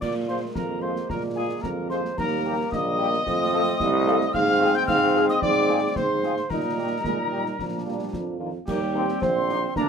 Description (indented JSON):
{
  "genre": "military-style march for wind band",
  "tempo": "111 BPM",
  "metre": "2/4",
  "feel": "straight",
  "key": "Eb major from 4.3 s",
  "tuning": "A4 = 441 Hz",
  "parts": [
    { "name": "mellow cornet", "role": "melody", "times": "0.0-9.9 s", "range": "G4 to G5", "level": "-27 LUFS", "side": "equal", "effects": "none" },
    { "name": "mellow piccolo", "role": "second line", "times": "0.0-9.9 s", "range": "G5 to G6", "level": "-30 LUFS", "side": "left 2 dB", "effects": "none" },
    { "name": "warm trombone section", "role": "sustained chords", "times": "0.0-9.9 s", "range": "F3 to Eb4", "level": "-30 LUFS", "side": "equal", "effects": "none" },
    { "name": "clear tuba", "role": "bass", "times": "0.0-9.9 s", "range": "Bb1 to Bb2", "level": "-26 LUFS", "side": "right 2 dB", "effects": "none" },
    { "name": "concert snare drum, clash cymbals and concert bass drum", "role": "drums", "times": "0.0-9.9 s", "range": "none", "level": "-34 LUFS", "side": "equal", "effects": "none" },
    { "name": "warm French horn section", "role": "accompaniment", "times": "0.3-9.6 s", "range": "G3 to A4", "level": "-29 LUFS", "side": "left 4 dB", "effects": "none" },
    { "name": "mellow euphonium", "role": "second line", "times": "7.1-9.9 s", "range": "Eb3 to C4", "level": "-30 LUFS", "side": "right 3 dB", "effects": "none" }
  ],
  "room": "moderate studio reverb, RT60 0.5 s",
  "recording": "minimal, uncompressed stereo recording",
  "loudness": "-21 LUFS",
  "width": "side -6 dB against mid",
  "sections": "0.0-8.7 A section; 8.7-9.9 B section",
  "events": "none",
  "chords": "0.0 Bb5; 2.2 Eb; 3.3 F; 4.3 Fm/Ab; 6.5 Eb/Bb; 7.6 Bb; 8.7 Eb"
}